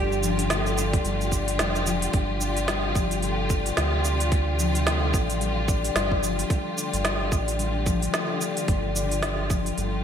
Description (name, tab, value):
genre	organic downtempo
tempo	110 BPM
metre	4/4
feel	swing 59% on 16ths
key	unclear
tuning	A4 = 440 Hz
part	oud	melody	0.0-1.6 s	G4	-33 LUFS	right 4 dB	none
part	dark symphonic string section	sustained chords	0.0-10.0 s	C3 to G4	-30 LUFS	right 1 dB	sidechain pumping
part	concert harp	arpeggios	0.0-10.0 s	F3 to D4	-29 LUFS	left 6 dB	low-pass filter, ping-pong delay
part	round analog bass	bass	0.0-10.0 s	F1 to D2	-28 LUFS	right 1 dB	none
part	organic electronic drum kit	drums	0.1-9.9 s	hi-hat, shaker, snare drum	-29 LUFS	right 1 dB	gated reverb
part	electronic kick drum	drums	0.9-9.6 s	none	-26 LUFS	right 1 dB	none
room	moderate lush hall reverb, RT60 2.4 s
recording	bright 1980s-style digital production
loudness	-22 LUFS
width	side -8 dB against mid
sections	0.0-2.1 A section; 2.1-10.0 B section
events	none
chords	0.0 G5; 2.1 Csus4/G; 6.5 G5